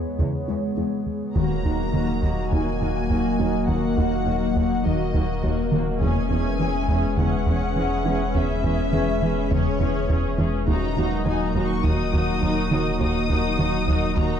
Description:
cinematic, hybrid orchestral and electronic film score; 103 BPM; 4/4; straight; Eb phrygian; A4 = 440 Hz
warbly tape-like pad; sustained chords; 0.0-14.4 s; Gb3 to Fb5; -26 LUFS; left 2 dB; chorus, built-in reverb
plucky analog bass; riff; 0.0-14.3 s; Eb2 to Fb3; -26 LUFS; right 1 dB
harp-like synth pluck; arpeggios; 0.2-14.3 s; Db3 to Eb4; -31 LUFS; left 1 dB; chorus, phaser, ping-pong delay
rich symphonic cello section; bass; 0.2-14.2 s; Eb2 to Fb2; -29 LUFS; right 2 dB
warm symphonic violin section; melody; 1.3-14.4 s; Db5 to Eb6; -31 LUFS; left 4 dB
rich symphonic viola section; accompaniment; 1.4-14.4 s; Bb3 to Ab4; -29 LUFS; right 1 dB
pure sine sub bass; bass; 1.4-14.4 s; Eb1 to Fb1; -29 LUFS; equal
moderate concert hall reverb, RT60 2.0 s; dark, warm production; -20 LUFS; side -8 dB against mid
0.0-1.4 A section; 1.4-14.4 B section
build-up 0.0-1.4
0.0 Dbm7/Fb; 1.4 Ebm; 6.0 Dbm7/Fb; 10.7 Ebm
0.19 0.78 | 1.36 1.94 2.52 3.11 | 3.69 4.27 4.85 5.44 | 6.02 6.60 7.18 7.77 | 8.35 8.93 9.51 10.10 | 10.68 11.26 11.85 12.43 | 13.01 13.59 14.18

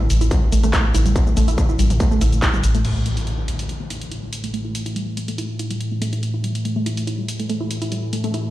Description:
driving peak-time techno; 142 BPM; 4/4; straight; A4 = 440 Hz
warbly dusty pluck; riff; 0.0-8.4 s; G3 to E4; -26 LUFS; right 1 dB; chorus, sidechain pumping, ping-pong delay
saturated sub bass; bass; 0.0-2.8 s; A1; -19 LUFS; equal; overdrive, sidechain pumping, low-pass filter
deep dark ambient pad; drone; 0.0-8.5 s; A2 to E3; -26 LUFS; equal; chorus, built-in reverb, sidechain pumping
techno drum kit; drums; 0.0-8.4 s; crash cymbal, handclaps, hi-hat, shaker, toms; -28 LUFS; left 1 dB
electronic kick drum; drums; 0.3-2.5 s; -18 LUFS; equal; distortion
impact; sound effects; 2.8-4.5 s; -27 LUFS; equal
moderate stone room reverb, RT60 1.0 s, digital ambience; played on a big sound system in a bare room, stone room reverb; -18 LUFS; side -15 dB against mid
0.0-2.8 A section; 2.8-8.5 B section
filter sweep on synth arpeggio sound 0.0-2.8; impact 2.8-4.5
0.0 A5
0.31 0.73 | 1.16 1.58 2.00 2.42 | 2.85 3.27 3.69 4.11 | 4.54 4.96 5.38 5.80 | 6.23 6.65 7.07 7.50 | 7.92 8.34

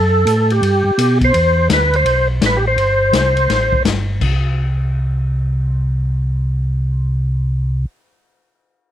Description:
soul jazz organ trio; 167 BPM; 4/4; swing 64% on 8ths; A4 = 441 Hz
percussive tonewheel organ; melody; 0.0-3.8 s; G4 to C5; -15 LUFS; equal; slow rotary speaker, overdrive, chorus vibrato
mellow tonewheel organ; bass; 0.0-7.9 s; G1 to B2; -16 LUFS; equal; overdrive, slow rotary speaker
swinging big-band drum kit; drums; 0.3-4.3 s; crash cymbal, hi-hat, kick drum, ride cymbal, snare drum; -21 LUFS; left 3 dB
small room ambience; 1960s-style stereo; -14 LUFS; side -11 dB against mid
0.0-1.3 A section; 1.3-4.2 B section; 4.2-7.1 C section
0.0 F#m; 0.6 Gadd11; 1.3 E5; 2.8 Gsus24; 4.2 N.C.
0.26 0.62 0.98 | 1.34 1.70 2.06 2.42 | 2.77 3.13 3.49 3.85 | 4.21 4.57 4.93 5.29 | 5.65 6.01 6.37 6.74

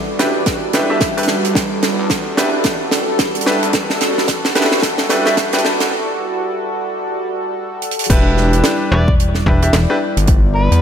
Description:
glitch hop; 110 BPM; 4/4; swing 60% on 16ths; E minor; A4 = 440 Hz
warm analog pad; sustained chords; 0.0-10.8 s; G3 to D5; -21 LUFS; right 1 dB; chorus, sidechain pumping
granular cloud pad; texture; 0.0-5.9 s; E4 to D5; -27 LUFS; equal; built-in reverb, sidechain pumping
bright concert grand piano; stabs; 0.2-10.0 s; D4 to E5; -20 LUFS; equal; sidechain pumping, analog delay
gritty driven synth bass; bass; 0.2-10.8 s; E1 to E2; -20 LUFS; equal
tight funk drum kit; drums; 0.2-10.8 s; crash cymbal, hi-hat, snare drum; -18 LUFS; right 1 dB
electronic kick drum; drums; 0.5-10.4 s; -17 LUFS; equal
overdriven harmonica; melody; 8.9-10.8 s; B4 to D5; -24 LUFS; equal; analog delay
slap-like FM bass; bass; 8.9-9.9 s; E1; -15 LUFS; equal
wet lush hall reverb, RT60 2.0 s; dreamy mix soaked in reverb, high-pass filter; -13 LUFS; side -8 dB against mid
0.0-8.1 A section; 8.1-10.8 B section
build-up 0.0-8.1; drum fill 0.0-5.9, 7.8; break 5.9-8.1; drop 8.1-10.8
0.0 Em7
0.46 1.01 | 1.55 2.10 2.65 3.19 | 3.74 4.28 4.83 5.37 | 5.92 6.46 7.01 7.55 | 8.10 8.64 9.19 9.74 | 10.28

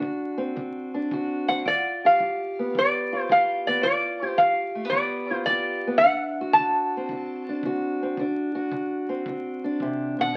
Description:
acoustic country blues, solo or duo; 110 BPM; 4/4; swing 68% on 8ths; D mixolydian; A4 = 438 Hz
fingerpicked steel-string acoustic guitar; accompaniment; 0.0-10.4 s; G2 to G4; -30 LUFS; equal
kick drum; drums; 0.0-10.4 s; -47 LUFS; equal
metal-body resonator slide guitar; melody; 1.5-10.4 s; D5 to A5; -24 LUFS; equal
moderate studio reverb, RT60 0.7 s; very old 78 rpm record, vinyl crackle; -25 LUFS; mono
0.0-10.4 A section
0.0 D7; 1.7 G7; 6.0 D7
0.03 0.57 1.12 | 1.66 2.20 2.75 3.29 | 3.83 4.38 4.92 5.46 | 6.01 6.55 7.09 7.63 | 8.18 8.72 9.26 9.80 | 10.35

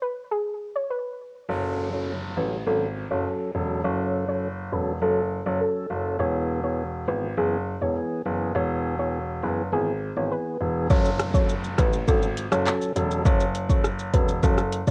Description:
dancehall; 102 BPM; 4/4; straight; F# minor; A4 = 440 Hz
soft round pluck; melody; 0.0-14.9 s; G#4 to C#5; -31 LUFS; equal; chorus, phaser, low-pass filter, cassette tape, analog delay, plate reverb
tonewheel organ; accompaniment; 1.5-14.9 s; E3 to A4; -32 LUFS; equal; slow rotary speaker, sidechain pumping, low-pass filter, cassette tape, plate reverb
warm grand piano; bass; 1.5-14.9 s; E1 to A1; -30 LUFS; equal
downlifter; sound effects; 1.5-6.2, 10.9-14.9 s; -43 LUFS; equal
afro-pop drum kit; drums; 10.9-14.9 s; handclaps, hi-hat, kick drum, rim click, shaker; -24 LUFS; equal
light reverb; home recording on cassette; -25 LUFS; mono
0.0-1.5 A section; 1.5-10.9 B section; 10.9-14.9 A section
break 0.0-1.5; filter sweep 1.5-10.9
0.0 N.C.; 1.5 F#m; 6.2 E; 10.9 F#m
0.31 0.90 | 1.49 2.08 2.67 3.25 | 3.84 4.43 5.02 5.61 | 6.20 6.78 7.37 7.96 | 8.55 9.14 9.72 10.31 | 10.90 11.49 12.08 12.67 | 13.25 13.84 14.43

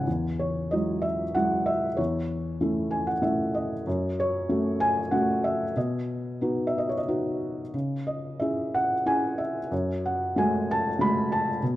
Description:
classical, lyrical solo piano; 94 BPM; 3/4; uneven beats, rubato; E major; A4 = 440 Hz
felt-muted upright piano; solo; 0.0-11.8 s; E2 to B5; -24 LUFS; equal
moderate recital hall reverb, RT60 1.7 s; dark, warm production; -24 LUFS; side -15 dB against mid
0.1-11.8 A section
felt piano fill 2.6-3.9
0.1 Eadd9; 2.0 A/E; 3.9 F#m; 5.8 B; 7.7 C#m; 9.7 F#madd9
| 0.07 0.72 1.36 | 1.99 2.62 3.24 | 3.86 4.49 5.12 | 5.76 6.42 7.07 | 7.74 8.41 9.07 | 9.71 10.36 11.00 | 11.62

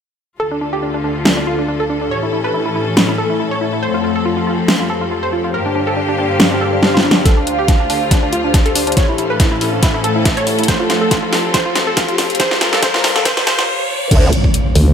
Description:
heavy wobble dubstep; 140 BPM; 4/4; swing 54% on 16ths, half-time; A4 = 440 Hz
wide unison pluck; melody; 0.4-13.7 s; D4 to C#5; -19 LUFS; right 1 dB; digital delay
bright studio string section; sustained chords; 0.4-13.7 s; D2 to Bb4; -21 LUFS; left 2 dB; sidechain pumping
ethereal airy pad; texture; 1.7-14.9 s; A3 to G#5; -22 LUFS; left 2 dB; ensemble chorus, built-in reverb, phaser, sidechain pumping
dubstep drum kit; drums; 1.3-14.8 s; crash cymbal, hi-hat, snare drum; -16 LUFS; equal; high-pass filter on snare, high-pass filter on hats, high-pass filter on cymbals, high-pass filter on room
electronic kick drum; drums; 7.3-14.5 s; -14 LUFS; equal; overdrive
riser and impact; sound effects; 8.4-14.9 s; -21 LUFS; equal
formant-sweep wobble bass; bass; 14.1-14.3 s; D2; -13 LUFS; equal; chorus, overdrive
vowel-sweep wobble bass; bass; 14.8-14.9 s; D2; -8 LUFS; equal; chorus, overdrive
moderate lush hall reverb, RT60 1.8 s, digital ambience; high-pass filter; -13 LUFS; side -8 dB against mid
0.4-7.3 A section; 7.3-14.1 B section
fade-in on ambient pad 0.4-7.3; drum fill 6.8-7.3, 7.3-13.7; build-up 7.3-14.1; filter sweep 7.3-14.1; riser 8.4-14.1; stop 13.7-14.1; impact 14.1-14.9
0.4 Dm; 2.1 A; 3.8 F; 5.5 Gm; 7.3 Dm; 9.0 A; 10.7 F; 12.4 Gm; 14.1 D5
| 0.40 0.83 1.25 1.68 | 2.11 2.54 2.97 3.40 | 3.83 4.25 4.68 5.11 | 5.54 5.97 6.40 6.83 | 7.25 7.68 8.11 8.54 | 8.97 9.40 9.83 10.26 | 10.68 11.11 11.54 11.97 | 12.40 12.83 13.26 13.68 | 14.11 14.54

